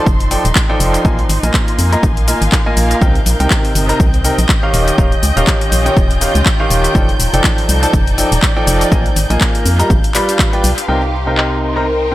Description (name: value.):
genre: piano house.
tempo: 122 BPM.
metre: 4/4.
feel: swing 57% on 16ths.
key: C minor.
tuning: A4 = 439 Hz.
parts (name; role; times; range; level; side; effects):
muted studio violin section; sustained chords; 0.0-12.1 s; C6 to G6; -26 LUFS; equal; sidechain pumping, low-pass filter.
clear concert grand piano; riff; 0.0-12.1 s; C3 to B5; -17 LUFS; equal; sidechain pumping, analog delay.
warm studio string section; texture; 0.0-12.1 s; C4 to Ab5; -22 LUFS; left 1 dB; sidechain pumping.
organ-like FM bass; bass; 0.1-12.1 s; Eb1 to F2; -16 LUFS; equal; sidechain pumping.
electronic kick drum; drums; 0.1-10.5 s; none; -14 LUFS; equal; none.
house drum kit; drums; 0.1-11.5 s; handclaps, hi-hat, shaker; -19 LUFS; left 1 dB; low-pass filter on cymbals, low-pass filter on perc, low-pass filter on hats, low-pass filter on snare, analog delay.
vibraphone with soft mallets; melody; 11.4-12.1 s; Bb4 to Eb5; -20 LUFS; left 2 dB; analog delay.
room: light reverb, small room reverb.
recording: echo-heavy mix.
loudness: -11 LUFS.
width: side -16 dB against mid.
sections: 0.0-10.9 A section; 10.9-12.1 B section.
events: none.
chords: 0.0 F13; 1.0 Bb7sus4; 3.0 Cm7; 4.7 Eb9; 7.0 F13; 8.9 Bb7sus4; 9.9 G7; 10.9 Cm7.